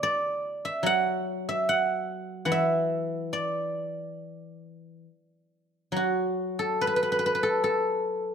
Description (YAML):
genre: chinese traditional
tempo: 72 BPM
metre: 4/4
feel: rubato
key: D gong mode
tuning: A4 = 440 Hz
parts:
  - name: guzheng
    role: solo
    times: 0.0-8.3 s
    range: E3 to F#5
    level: -25 LUFS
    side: equal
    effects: none
room: light reverb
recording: close, detailed microphones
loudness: -25 LUFS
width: side -7 dB against mid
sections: 0.0-5.9 A section; 5.9-8.3 B section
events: none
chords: none